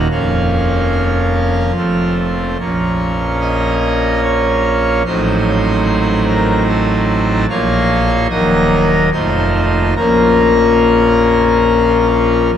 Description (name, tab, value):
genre	classical, chorale-style piece for pipe organ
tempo	73 BPM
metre	3/4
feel	rubato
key	Bb minor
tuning	A4 = 440 Hz
part	pipe organ, full organ	solo	0.0-12.6 s	Eb1 to Eb5	-12 LUFS	equal	none
room	wet cathedral reverb, RT60 7.0 s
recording	in a vast, echoing space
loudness	-12 LUFS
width	side -9 dB against mid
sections	0.0-12.5 A section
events	none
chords	0.1 Bbm/F; 1.8 F; 2.6 Bbm; 5.1 Adim7; 7.5 Bbm; 8.3 Ebm; 9.1 F7; 10.0 Bbm